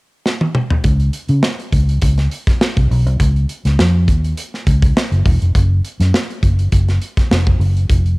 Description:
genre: polished 1980s jazz-funk pop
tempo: 102 BPM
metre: 4/4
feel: swing 54% on 16ths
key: Db major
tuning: A4 = 440 Hz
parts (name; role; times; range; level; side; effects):
- modern studio drum kit; drums; 0.3-8.2 s; hi-hat, kick drum, snare drum, toms; -16 LUFS; equal; cassette tape
- vintage muted fingered electric bass; bass; 0.8-8.1 s; Fb1 to Db3; -14 LUFS; equal; none
room: little or no reverb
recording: home recording on cassette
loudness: -13 LUFS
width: side -24 dB against mid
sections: 0.8-8.2 A section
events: drum fill 0.3-0.8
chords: none

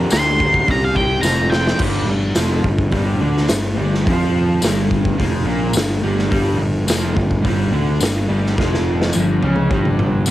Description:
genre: garage rock duo or trio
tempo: 106 BPM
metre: 4/4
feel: straight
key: G minor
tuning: A4 = 439 Hz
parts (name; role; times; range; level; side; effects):
- raw garage guitar; riff; 0.0-10.3 s; F2 to C5; -21 LUFS; equal; overdrive
- fuzz picked electric bass; bass; 0.0-10.3 s; F1 to F2; -19 LUFS; equal; overdrive
- octave-fuzz lead guitar; melody; 0.1-1.8 s; F5 to C6; -18 LUFS; equal; distortion, cassette tape
- raw garage drum kit; drums; 0.1-10.3 s; crash cymbal, hi-hat, kick drum, snare drum, toms; -20 LUFS; equal; cassette tape
- tambourine; percussion; 0.1-10.3 s; none; -26 LUFS; left 3 dB; none
room: small room reverb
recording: home recording on cassette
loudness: -15 LUFS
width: side -14 dB against mid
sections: 0.0-1.8 A section; 1.8-10.3 B section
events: lead electric guitar solo 0.0-1.8; drum fill 1.2-1.8, 8.6-10.3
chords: 0.0 Gm; 0.7 C5; 1.2 F5; 1.8 G5

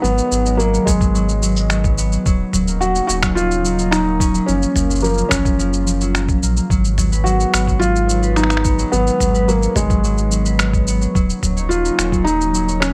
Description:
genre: folktronica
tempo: 108 BPM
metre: 4/4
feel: straight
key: G# dorian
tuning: A4 = 440 Hz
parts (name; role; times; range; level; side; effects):
- felt-muted upright piano; melody; 0.0-12.9 s; G#3 to F#4; -22 LUFS; equal; none
- warm analog pad; sustained chords; 0.0-12.9 s; C#3 to E#4; -30 LUFS; equal; chorus
- concert harp; arpeggios; 0.0-12.9 s; E#3 to C#5; -25 LUFS; equal; digital delay
- warm sub bass; bass; 0.0-12.9 s; D#1 to A#1; -22 LUFS; equal; none
- lo-fi sampler-style drum kit; drums; 0.0-12.9 s; cabasa, finger snaps, toms; -24 LUFS; equal; none
- electronic kick drum; drums; 0.9-12.2 s; none; -21 LUFS; equal; none
room: light reverb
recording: none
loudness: -17 LUFS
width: mono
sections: 0.0-12.9 A section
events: none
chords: 0.0 G#m7; 2.3 D#m7; 4.5 F#maj7; 6.7 G#m7; 11.1 D#m7

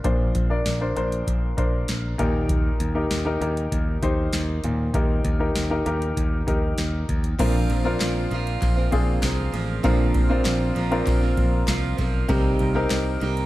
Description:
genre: piano-driven pop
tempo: 98 BPM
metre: 4/4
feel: straight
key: unclear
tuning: A4 = 441 Hz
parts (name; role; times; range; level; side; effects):
- clear grand piano; accompaniment; 0.0-13.5 s; Bb2 to D5; -25 LUFS; left 1 dB; none
- modern bright picked electric bass; bass; 0.0-13.5 s; A1 to Eb2; -26 LUFS; equal; none
- booming analog drum machine; drums; 0.0-13.5 s; crash cymbal, hi-hat, kick drum, ride cymbal, snare drum; -24 LUFS; equal; none
- picked steel-string acoustic guitar; riff; 7.4-13.5 s; Bb2 to G4; -29 LUFS; right 5 dB; none
- group handclap; percussion; 8.0-13.0 s; none; -40 LUFS; left 7 dB; none
room: studio ambience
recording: dark, warm production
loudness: -20 LUFS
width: side -16 dB against mid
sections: 0.0-7.4 A section; 7.4-13.5 B section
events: none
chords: 0.0 Bbadd9; 2.2 Eb; 7.4 Bbadd9; 12.3 Cm7

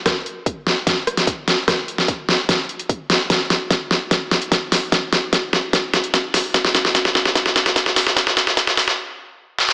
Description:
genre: heavy wobble dubstep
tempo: 148 BPM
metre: 4/4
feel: half-time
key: none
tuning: none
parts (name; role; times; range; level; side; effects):
- dubstep drum kit; drums; 0.1-9.7 s; hi-hat, rim click, snare drum; -16 LUFS; equal; overdrive
- electronic kick drum; drums; 0.1-8.7 s; none; -24 LUFS; equal; none
room: moderate lush hall reverb, RT60 1.6 s, digital ambience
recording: high-pass filter, small speaker sound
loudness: -16 LUFS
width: side -29 dB against mid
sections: 0.0-9.7 A section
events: build-up 0.0-9.7; drum fill 0.0-9.0; stop 9.0-9.7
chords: none

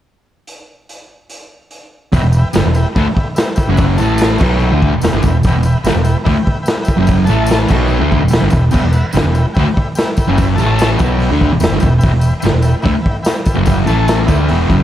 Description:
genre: garage rock duo or trio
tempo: 146 BPM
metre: 4/4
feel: straight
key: E minor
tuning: A4 = 440 Hz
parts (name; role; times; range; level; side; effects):
- raw garage drum kit; drums; 0.5-14.8 s; crash cymbal, hi-hat, kick drum, snare drum; -16 LUFS; equal; none
- fuzz guitar; riff; 2.1-14.8 s; E2 to D4; -14 LUFS; equal; distortion
- hollow-body short-scale fingered electric bass; bass; 2.1-14.8 s; E1 to D2; -17 LUFS; equal; none
- tambourine; percussion; 2.1-14.8 s; none; -34 LUFS; left 4 dB; none
- combo organ; sustained chords; 2.2-14.8 s; A4 to A5; -23 LUFS; left 1 dB; none
room: light reverb, studio reverb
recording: cassette tape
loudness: -11 LUFS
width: side -12 dB against mid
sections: 0.5-2.1 A section; 2.1-14.8 B section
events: none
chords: 0.5 N.C.; 2.1 Em; 4.0 A5; 4.4 Em; 7.3 A5; 7.7 Em; 10.6 A5; 11.0 Em; 13.9 A5; 14.3 Em

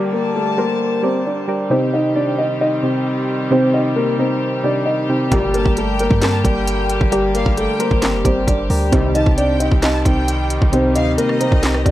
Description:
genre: hip hop, trap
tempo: 133 BPM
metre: 4/4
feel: half-time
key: unclear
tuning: A4 = 437 Hz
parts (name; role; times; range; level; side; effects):
- dark concert grand piano; melody; 0.0-11.9 s; G3 to Eb5; -20 LUFS; left 1 dB; low-pass filter
- soft electric-piano-like synth keys; accompaniment; 0.0-11.9 s; C3 to D5; -20 LUFS; right 1 dB; chorus, low-pass filter
- warm studio string section; sustained chords; 0.0-11.9 s; D3 to A5; -26 LUFS; left 2 dB; none
- downlifter; sound effects; 0.0-1.7 s; none; -44 LUFS; equal; none
- sync-sweep polysynth; stabs; 5.3-5.6, 8.9-9.2 s; D2 to G3; -26 LUFS; left 2 dB; chorus
- warm 808-style bass; bass; 5.3-11.9 s; F1 to G2; -20 LUFS; equal; none
- trap drum kit; drums; 5.3-11.9 s; handclaps, hi-hat, kick drum, rim click, snare drum; -18 LUFS; equal; none
- rich symphonic violin section; second line; 5.5-11.9 s; Eb5 to A5; -28 LUFS; equal; analog delay
room: digital ambience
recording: dry, gritty hardware recording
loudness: -14 LUFS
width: side -14 dB against mid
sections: 0.0-11.9 A section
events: none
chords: 0.0 Gm; 1.7 Cm; 5.3 Gm; 8.9 Cm

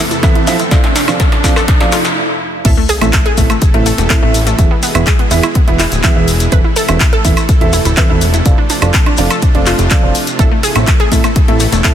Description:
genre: progressive house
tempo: 124 BPM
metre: 4/4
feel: straight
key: A harmonic minor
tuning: A4 = 440 Hz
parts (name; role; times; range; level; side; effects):
- supersaw pad; sustained chords; 0.0-11.9 s; E2 to A4; -21 LUFS; right 1 dB; sidechain pumping
- analog pluck; arpeggios; 0.0-11.9 s; A3 to B4; -19 LUFS; left 1 dB; chorus, sidechain pumping, dub echo
- riser and sub drop; sound effects; 0.0-4.6 s; none; -21 LUFS; equal; none
- deep house drum kit; drums; 0.1-11.9 s; crash cymbal, handclaps, hi-hat, snare drum, woodblock; -18 LUFS; equal; high-pass filter on snare, high-pass filter on hats, high-pass filter on perc, high-pass filter on cymbals, high-pass filter on room
- shekere; percussion; 0.1-11.9 s; none; -23 LUFS; left 5 dB; none
- dark baby grand piano; stabs; 0.2-11.9 s; A2 to E5; -18 LUFS; right 4 dB; sidechain pumping, dub echo
- electronic kick drum; drums; 0.2-11.9 s; none; -11 LUFS; equal; none
- fat analog bass; bass; 2.6-11.8 s; D1 to A1; -15 LUFS; equal; sidechain pumping
room: little or no reverb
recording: dense, heavily limited modern master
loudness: -9 LUFS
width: side -10 dB against mid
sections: 0.0-2.6 A section; 2.6-11.9 B section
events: build-up 0.0-2.6; drum fill 0.0-2.2; riser 0.0-2.2; filter sweep on synth arpeggio sound 0.0-2.6; stop 2.2-2.6; drop 2.6-11.9; impact 2.6-4.6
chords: 0.0 Am/E; 0.7 Dm7/F; 2.6 Am; 4.6 E; 6.5 Am/E; 8.5 Dm7/F; 10.4 Am

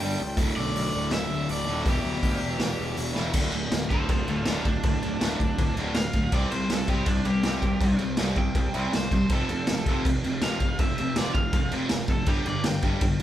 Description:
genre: punk rock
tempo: 161 BPM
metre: 4/4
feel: straight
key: unclear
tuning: A4 = 440 Hz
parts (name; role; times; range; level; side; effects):
- overdriven electric guitar; melody; 0.0-13.0 s; D4 to G5; -33 LUFS; equal; none
- sludgy distorted guitar; riff; 0.0-13.2 s; D2 to C4; -28 LUFS; equal; overdrive
- fuzz picked electric bass; bass; 0.0-13.1 s; D1 to D2; -31 LUFS; equal; overdrive
- raw garage drum kit; drums; 0.0-13.2 s; crash cymbal, hi-hat, kick drum, snare drum; -26 LUFS; equal; none
room: light reverb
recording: band playing live in one room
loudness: -23 LUFS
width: side -12 dB against mid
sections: 0.0-3.4 A section; 3.4-13.2 B section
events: half time 0.0-3.4; drum fill 3.2; overdriven electric guitar solo 3.4-13.2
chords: 0.4 D5; 1.9 Em; 3.4 D5; 6.3 C5; 9.3 F; 12.3 G5

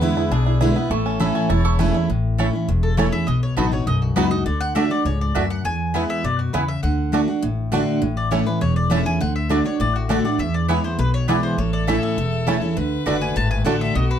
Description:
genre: bluegrass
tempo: 202 BPM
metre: 4/4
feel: straight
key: A major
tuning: A4 = 443 Hz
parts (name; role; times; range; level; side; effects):
- clear fiddle; second line; 0.0-1.9, 11.6-14.2 s; F#4 to C#5; -30 LUFS; left 6 dB; none
- picked steel-string acoustic guitar; accompaniment; 0.0-14.2 s; E2 to F#4; -21 LUFS; equal; none
- bluegrass banjo; arpeggios; 0.0-13.7 s; A3 to A4; -25 LUFS; right 7 dB; none
- upright bass; bass; 0.0-14.2 s; E1 to F#2; -23 LUFS; left 1 dB; none
- mandolin; stabs; 0.9-13.8 s; A3 to C#6; -28 LUFS; right 3 dB; none
- mandolin; melody; 2.8-14.2 s; F#4 to A5; -27 LUFS; left 3 dB; none
room: moderate studio ambience, RT60 0.5 s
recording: dark, warm production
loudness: -18 LUFS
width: side -9 dB against mid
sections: 0.0-2.1 A section; 2.1-14.2 B section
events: none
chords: 0.0 E7; 0.9 A; 3.3 B; 4.5 D; 5.6 E; 6.8 D; 8.0 A; 9.2 D; 10.4 E; 11.6 A; 12.8 D

